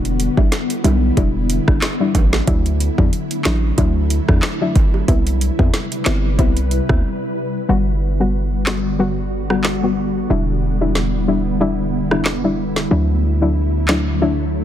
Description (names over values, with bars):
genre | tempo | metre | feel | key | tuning
dancehall | 92 BPM | 4/4 | swing 56% on 16ths | E minor | A4 = 439 Hz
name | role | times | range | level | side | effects
soft round pluck | accompaniment | 0.0-14.4 s | F#3 to F#4 | -21 LUFS | left 3 dB | chorus
ethereal airy pad | sustained chords | 0.0-14.6 s | C3 to B4 | -22 LUFS | left 1 dB | ensemble chorus, built-in reverb
hard-hitting 808-style bass | bass | 0.0-14.6 s | E1 to E2 | -19 LUFS | equal | none
afro-pop drum kit | drums | 0.1-14.1 s | handclaps, hi-hat, kick drum, rim click, snare drum | -18 LUFS | equal | overdrive
bongos | percussion | 0.4-6.6 s | none | -30 LUFS | right 9 dB | none
room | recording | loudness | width
little or no reverb | dense, heavily limited modern master | -15 LUFS | side -11 dB against mid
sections
0.0-7.7 A section; 7.7-14.6 B section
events
break 7.0-7.7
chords
0.0 Em7; 2.5 Dadd9; 5.1 Cmaj7; 7.7 Gmaj7; 10.3 Em7; 12.9 Dadd9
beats
0.52 1.17 1.82 | 2.48 3.13 3.78 4.43 | 5.08 5.74 6.39 7.04 | 7.69 8.34 9.00 9.65 | 10.30 10.95 11.61 12.26 | 12.91 13.56 14.21